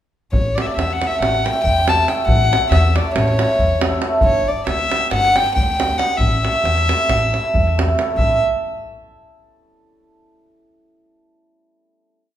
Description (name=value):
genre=balkan folk, Balkan wedding band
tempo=274 BPM (eighths)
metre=9/8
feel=straight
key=A mixolydian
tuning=A4 = 440 Hz
part: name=warm violin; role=melody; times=0.3-8.4 s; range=C#5 to A5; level=-19 LUFS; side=left 2 dB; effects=none
part: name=upright bass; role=bass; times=0.3-8.4 s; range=G1 to E2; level=-20 LUFS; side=equal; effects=none
part: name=davul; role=percussion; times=0.3-8.4 s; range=none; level=-21 LUFS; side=right 1 dB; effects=none
part: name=cimbalom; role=accompaniment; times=0.6-8.4 s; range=G3 to A4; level=-21 LUFS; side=right 2 dB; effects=none
room=wet recital hall reverb, RT60 1.5 s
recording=minimal, uncompressed stereo recording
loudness=-15 LUFS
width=side -11 dB against mid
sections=0.3-8.2 A section; 8.2-10.1 final chord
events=none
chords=0.3 A; 4.2 G; 6.2 A